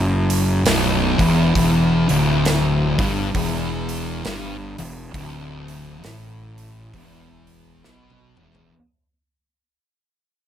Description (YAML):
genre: stoner and doom metal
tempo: 67 BPM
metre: 4/4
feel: swing 60% on 8ths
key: unclear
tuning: A4 = 440 Hz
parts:
  - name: thick fuzz guitar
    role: riff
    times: 0.0-8.7 s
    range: B1 to B2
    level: -20 LUFS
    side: left 1 dB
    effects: distortion
  - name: fuzz fingered electric bass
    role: bass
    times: 0.0-8.7 s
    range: B0 to B1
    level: -25 LUFS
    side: equal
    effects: overdrive
  - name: big rock drum kit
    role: drums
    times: 0.3-8.7 s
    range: hi-hat, kick drum, snare drum, toms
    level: -24 LUFS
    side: equal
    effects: none
room: light reverb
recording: none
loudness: -16 LUFS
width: side -10 dB against mid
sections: 0.0-8.7 A section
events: fade-out 0.0-8.7; drum fill 7.8-8.7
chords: 0.0 B5; 1.6 E5